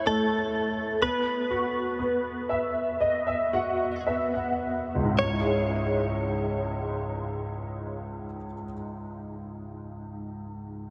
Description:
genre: pop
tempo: 53-64 BPM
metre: 4/4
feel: straight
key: C# minor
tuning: A4 = 437 Hz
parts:
  - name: direct-recorded clean electric guitar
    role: melody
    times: 0.0-8.5 s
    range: A4 to C#5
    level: -32 LUFS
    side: equal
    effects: analog chorus, tape echo
  - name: clear grand piano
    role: accompaniment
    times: 0.0-10.9 s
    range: C#2 to F#5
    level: -30 LUFS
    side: equal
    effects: ensemble chorus
room: wet huge ambient reverb, RT60 6.3 s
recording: dreamy mix soaked in reverb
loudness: -28 LUFS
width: mono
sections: 0.0-5.2 A section; 5.2-9.7 B section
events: slowing down 0.0-5.2; grand piano fill 2.0-5.2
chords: 0.0 A5; 1.0 B5; 5.2 C#m

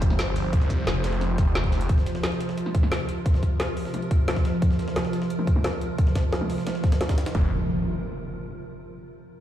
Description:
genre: dark technical drum and bass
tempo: 176 BPM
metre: 4/4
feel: straight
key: unclear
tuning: A4 = 440 Hz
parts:
  - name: swarming drone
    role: sustained chords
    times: 0.0-7.5 s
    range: C3 to C5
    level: -29 LUFS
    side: right 1 dB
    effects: built-in reverb, sidechain pumping
  - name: snarling distorted saw bass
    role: bass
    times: 0.0-1.9, 7.3-7.5 s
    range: F1 to C2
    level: -26 LUFS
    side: equal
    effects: distortion
  - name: breakbeat sampler-style drum kit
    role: drums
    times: 0.0-7.3 s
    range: hi-hat, snare drum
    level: -36 LUFS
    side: left 1 dB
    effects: high-pass filter on hats, high-pass filter on snare, high-pass filter on room
  - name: drum and bass drum kit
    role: drums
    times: 0.0-7.3 s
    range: hi-hat, shaker, snare drum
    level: -31 LUFS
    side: equal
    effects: low-pass filter on toms, low-pass filter on snare, low-pass filter on hats, low-pass filter on perc, low-pass filter on cymbals, low-pass filter on room
  - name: electronic kick drum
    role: drums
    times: 0.0-7.4 s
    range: none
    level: -21 LUFS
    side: equal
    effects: none
  - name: impact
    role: sound effects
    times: 7.3-8.7 s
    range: none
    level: -30 LUFS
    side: equal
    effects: none
room: moderate lush hall reverb, RT60 1.9 s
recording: played on a big sound system in a bare room, large studio reverb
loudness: -22 LUFS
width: side -12 dB against mid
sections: 0.0-7.3 A section; 7.3-8.7 B section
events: filter sweep on drum 0.0-7.3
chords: 0.0 F5

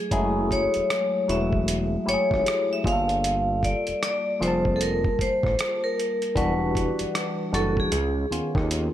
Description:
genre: R&B, neo-soul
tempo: 77 BPM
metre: 4/4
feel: swing 63% on 16ths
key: unclear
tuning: A4 = 441 Hz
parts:
  - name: vibraphone with hard mallets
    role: melody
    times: 0.0-8.9 s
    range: G#4 to F5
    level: -25 LUFS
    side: equal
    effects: none
  - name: barky tine electric piano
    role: accompaniment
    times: 0.0-8.9 s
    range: D#3 to A5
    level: -28 LUFS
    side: left 1 dB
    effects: overdrive, phaser
  - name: fat analog bass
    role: bass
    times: 0.1-8.9 s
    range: E1 to D#2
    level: -28 LUFS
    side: equal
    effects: none
  - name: dusty soul sampler-style drum kit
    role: drums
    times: 0.1-8.9 s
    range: hi-hat, kick drum, rim click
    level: -29 LUFS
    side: right 1 dB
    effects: none
room: light reverb, digital ambience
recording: none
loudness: -22 LUFS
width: side -12 dB against mid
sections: 0.0-8.9 A section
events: drum fill 8.7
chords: 0.0 F#m9; 2.8 Gm9; 6.4 Em9; 7.9 C#9

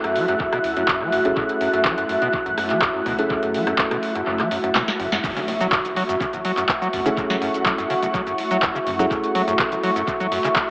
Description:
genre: acid house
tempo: 124 BPM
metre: 4/4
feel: straight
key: F# minor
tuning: A4 = 440 Hz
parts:
  - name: dark analog pad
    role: sustained chords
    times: 0.0-10.7 s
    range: F#4 to F#6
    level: -23 LUFS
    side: equal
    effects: chorus, sidechain pumping
  - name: overdriven acid bass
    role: riff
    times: 0.0-10.6 s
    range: F#1 to F#3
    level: -27 LUFS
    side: equal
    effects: analog chorus, sidechain pumping, dub echo
  - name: dark concert grand piano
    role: stabs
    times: 0.0-10.7 s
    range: A3 to G#4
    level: -27 LUFS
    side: equal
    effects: dub echo
  - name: booming analog drum machine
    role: drums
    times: 0.0-10.7 s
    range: crash cymbal, handclaps, hi-hat, rim click, shaker, snare drum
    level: -24 LUFS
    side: equal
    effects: dub echo
  - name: ethereal airy pad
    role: texture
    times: 0.1-10.7 s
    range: A3 to F#5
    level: -29 LUFS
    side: equal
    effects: ensemble chorus, built-in reverb, sidechain pumping
  - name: electronic kick drum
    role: drums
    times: 0.4-10.7 s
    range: none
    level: -31 LUFS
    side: equal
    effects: none
  - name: warm sub bass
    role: bass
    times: 0.6-10.3 s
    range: E1 to F#2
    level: -41 LUFS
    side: equal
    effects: sidechain pumping
  - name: impact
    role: sound effects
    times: 5.2-7.2 s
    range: none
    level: -35 LUFS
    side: equal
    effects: none
room: wet spring reverb, RT60 2.1 s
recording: echo-heavy mix, AM radio sound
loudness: -18 LUFS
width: side -26 dB against mid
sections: 0.0-5.2 A section; 5.2-10.7 B section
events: kick drops out 4.3-5.2; drum fill 4.8-5.2; band accent 5.1; drop 5.2-10.7; impact 5.2-7.2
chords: 0.0 F#m7

